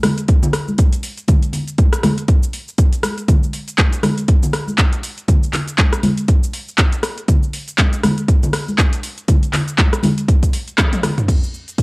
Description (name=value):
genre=house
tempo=120 BPM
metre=4/4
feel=swing 58% on 16ths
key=none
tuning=none
part: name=deep house drum kit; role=drums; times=0.0-11.8 s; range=cabasa, crash cymbal, handclaps, hi-hat, rim click, toms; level=-20 LUFS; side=equal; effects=overdrive, cassette tape
part: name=congas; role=percussion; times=0.0-11.2 s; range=none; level=-20 LUFS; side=equal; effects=none
part: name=electronic kick drum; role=drums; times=0.3-11.8 s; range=none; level=-14 LUFS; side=equal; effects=overdrive, cassette tape
room=light reverb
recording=home recording on cassette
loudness=-14 LUFS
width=side -26 dB against mid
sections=0.0-11.3 A section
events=drum fill 10.8-11.3; band accent 10.8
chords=none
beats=0.28 0.79 | 1.28 1.78 2.29 2.79 | 3.29 3.79 4.29 4.79 | 5.29 5.79 6.29 6.79 | 7.29 7.79 8.29 8.79 | 9.29 9.79 10.29 10.79 | 11.29 11.79